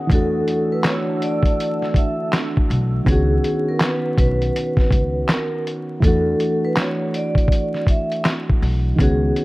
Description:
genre	lo-fi hip hop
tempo	81 BPM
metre	4/4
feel	swing 62% on 16ths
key	unclear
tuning	A4 = 440 Hz
part	soft electric-piano-like synth keys	accompaniment	0.0-9.4 s	Eb3 to F#4	-23 LUFS	right 1 dB	chorus
part	deep dark ambient pad	sustained chords	0.0-3.0, 9.0-9.4 s	D4 to E6	-31 LUFS	equal	chorus, built-in reverb
part	vibraphone with medium hard mallets	melody	0.1-9.4 s	Ab4 to E5	-24 LUFS	equal	none
part	upright bass	bass	0.1-9.3 s	B1 to E2	-21 LUFS	equal	none
part	lo-fi sampler-style drum kit	drums	0.1-9.4 s	handclaps, hi-hat, kick drum, snare drum	-19 LUFS	equal	none
room	little or no reverb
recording	vinyl crackle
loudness	-17 LUFS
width	side -20 dB against mid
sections	0.0-9.4 A section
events	none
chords	0.1 E9sus4; 3.1 Db9sus4; 6.0 E9sus4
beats	| 0.10 0.84 1.58 2.32 | 3.06 3.80 4.54 5.28 | 6.02 6.76 7.50 8.24 | 8.98

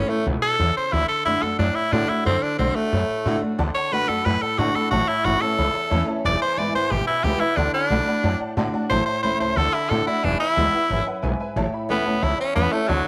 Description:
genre	rockabilly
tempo	180 BPM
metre	4/4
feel	straight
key	A major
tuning	A4 = 440 Hz
part	raspy tenor saxophone	melody	0.0-13.1 s	F#3 to D5	-24 LUFS	equal	none
part	picked old ladder-braced acoustic guitar	accompaniment	0.0-13.1 s	E2 to F#4	-29 LUFS	equal	none
part	upright bass	bass	0.0-13.0 s	E1 to A2	-27 LUFS	equal	none
part	honky-tonk upright piano	accompaniment	3.6-13.1 s	B4 to B5	-34 LUFS	equal	none
room	moderate spring reverb, RT60 1.4 s, small room ambience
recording	none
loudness	-22 LUFS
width	mono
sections	0.0-11.6 A section; 11.6-13.1 B section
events	tenor saxophone solo 11.6-13.1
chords	0.0 A; 0.9 D; 4.9 A; 6.3 E; 7.6 D; 8.9 A; 9.6 D; 10.2 E; 11.6 A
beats	0.27 0.60 | 0.93 1.27 1.60 1.93 | 2.26 2.60 2.93 3.26 | 3.59 3.92 4.26 4.59 | 4.92 5.25 5.59 5.92 | 6.25 6.58 6.92 7.25 | 7.58 7.91 8.24 8.58 | 8.91 9.24 9.57 9.91 | 10.24 10.57 10.90 11.24 | 11.57 11.90 12.23 12.57 | 12.90

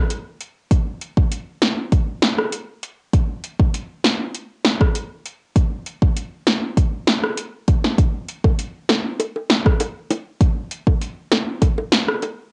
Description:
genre	dancehall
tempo	99 BPM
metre	4/4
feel	straight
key	none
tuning	none
part	deep house drum kit	drums	0.1-12.4 s	hi-hat, kick drum, rim click, snare drum	-19 LUFS	equal	overdrive, cassette tape
part	bongos	percussion	8.4-12.4 s	none	-26 LUFS	equal	none
room	light reverb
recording	home recording on cassette, nothing above 10.4 kHz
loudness	-20 LUFS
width	mono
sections	0.0-8.0 A section; 8.0-12.5 B section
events	none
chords	none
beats	0.10 | 0.71 1.32 1.92 2.53 | 3.13 3.74 4.35 4.95 | 5.56 6.16 6.77 7.38 | 7.98 8.59 9.19 9.80 | 10.41 11.01 11.62 12.22

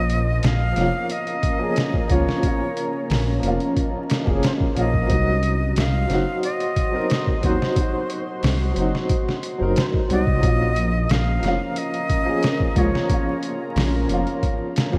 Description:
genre	trip hop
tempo	90 BPM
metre	4/4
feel	straight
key	Bb minor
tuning	A4 = 441 Hz
part	silver concert flute	melody	0.0-13.8 s	C5 to F5	-30 LUFS	equal	tape echo
part	warm upright piano	accompaniment	0.0-15.0 s	F3 to Bb4	-28 LUFS	equal	tremolo, tape echo
part	deep dark ambient pad	sustained chords	1.2-15.0 s	Db4 to C6	-32 LUFS	equal	chorus, built-in reverb
part	dark detuned saw bass	bass	0.0-15.0 s	F1 to Eb2	-24 LUFS	equal	tube saturation
part	trip hop sampler-style drum kit	drums	0.1-15.0 s	hi-hat, kick drum, snare drum	-25 LUFS	equal	none
room	moderate lush hall reverb, RT60 2.7 s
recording	dreamy mix soaked in reverb, vinyl crackle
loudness	-21 LUFS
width	mono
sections	0.0-15.0 A section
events	none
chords	0.0 Bbm; 5.1 Cdim; 10.4 Bbm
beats	0.43 1.10 1.76 | 2.43 3.10 3.76 4.43 | 5.10 5.76 6.43 7.10 | 7.76 8.43 9.10 9.76 | 10.43 11.10 11.76 12.43 | 13.10 13.76 14.43

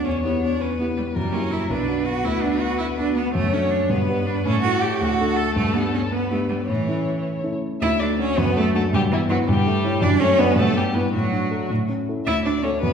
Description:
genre	quick classical-period movement for piano trio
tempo	108 BPM (dotted quarters)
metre	6/8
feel	straight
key	B minor, D major from 3.4 s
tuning	A4 = 440 Hz
part	clear cello	second line	0.0-12.9 s	E3 to A4	-23 LUFS	right 4 dB	none
part	dark grand piano	accompaniment	0.0-12.9 s	B1 to D5	-22 LUFS	left 1 dB	none
part	rich violin	melody	0.1-12.9 s	E4 to E5	-26 LUFS	left 4 dB	none
room	wet recital hall reverb, RT60 1.4 s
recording	heard from further back in the room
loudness	-19 LUFS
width	side -7 dB against mid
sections	0.0-7.8 A section; 7.8-12.9 B section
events	none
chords	0.1 Em; 1.2 F#7b9; 1.7 Bm; 2.3 Bm/D; 3.4 D/F#; 3.9 G; 4.5 A5; 5.0 D; 5.6 G; 6.7 A; 7.8 D; 8.4 D/F#; 8.9 Em/G; 9.5 A7/G; 10.0 D/F#; 10.6 Em/G; 11.1 D/A; 11.7 A; 12.3 D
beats	| 0.06 0.61 | 1.16 1.71 | 2.26 2.80 | 3.35 3.90 | 4.46 5.01 | 5.57 6.12 | 6.69 7.25 | 7.82 8.38 | 8.93 9.48 | 10.02 10.57 | 11.13 11.70 | 12.26 12.82

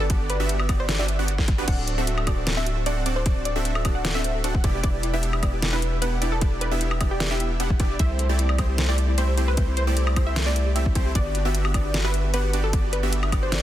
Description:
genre	future bass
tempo	152 BPM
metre	4/4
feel	half-time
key	G major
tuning	A4 = 440 Hz
part	wide unison pluck	melody	0.0-13.6 s	G4 to F#5	-32 LUFS	equal	sidechain pumping, tape echo
part	airy dreamy lead	arpeggios	0.0-13.6 s	B4 to F#5	-36 LUFS	equal	chorus, sidechain pumping
part	supersaw stab	riff	0.0-13.6 s	A3 to F#5	-29 LUFS	right 1 dB	sidechain pumping, tape echo
part	long sustained 808-style bass	bass	0.0-13.6 s	D1 to C2	-24 LUFS	equal	sidechain pumping
part	electronic kick drum	drums	0.1-13.4 s	none	-23 LUFS	equal	none
part	pop drum kit	drums	0.1-13.6 s	crash cymbal, hi-hat, snare drum, woodblock	-29 LUFS	equal	overdrive
part	thumb-piano-like synth pluck	arpeggios	1.7-13.6 s	E4 to C5	-37 LUFS	left 5 dB	chorus, sidechain pumping, tape echo
room	digital ambience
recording	dense, heavily limited modern master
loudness	-21 LUFS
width	side -13 dB against mid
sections	0.0-13.6 A section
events	none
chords	0.0 Gmaj7; 1.7 D7; 4.6 Em7; 8.0 C6; 11.2 Gmaj7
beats	| 0.10 0.49 0.89 1.28 | 1.68 2.07 2.47 2.86 | 3.26 3.65 4.05 4.44 | 4.84 5.23 5.63 6.02 | 6.42 6.81 7.21 7.60 | 7.99 8.39 8.78 9.18 | 9.57 9.97 10.36 10.76 | 11.15 11.55 11.94 12.34 | 12.73 13.13 13.52

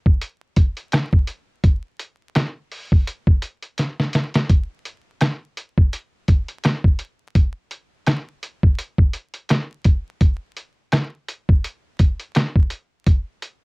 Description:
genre	hip hop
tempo	84 BPM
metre	4/4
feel	swing 57% on 16ths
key	none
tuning	none
part	lo-fi sampler-style drum kit	drums	0.1-13.6 s	hi-hat, kick drum, rim click, snare drum	-16 LUFS	equal	vintage 12-bit sampler grit, cassette tape
room	light reverb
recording	home recording on cassette, vinyl crackle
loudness	-18 LUFS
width	side -37 dB against mid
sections	0.0-13.6 A section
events	drum fill 3.8-4.5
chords	none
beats	0.21 0.92 | 1.64 2.35 3.07 3.78 | 4.50 5.21 5.92 6.64 | 7.35 8.07 8.78 9.50 | 10.21 10.92 11.64 12.35 | 13.07

